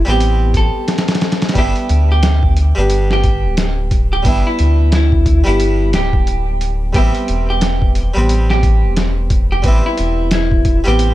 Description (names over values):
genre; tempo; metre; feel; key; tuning
trip hop; 89 BPM; 4/4; swing 60% on 16ths; A minor; A4 = 440 Hz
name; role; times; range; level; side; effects
harpsichord; accompaniment; 0.0-11.1 s; G3 to G4; -21 LUFS; equal; harmonic tremolo, tape echo
round analog bass; bass; 0.0-11.1 s; D1 to D2; -15 LUFS; equal; none
semi-hollow electric guitar; melody; 0.1-11.1 s; E4 to A4; -21 LUFS; right 1 dB; tape echo
boom bap sampler-style drum kit; drums; 0.1-11.1 s; hi-hat, kick drum, snare drum; -16 LUFS; equal; none
room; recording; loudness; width
little or no reverb; dark, warm production; -12 LUFS; side -15 dB against mid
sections
0.0-11.1 A section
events
none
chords
0.0 Am7; 1.6 Em7; 6.9 Am7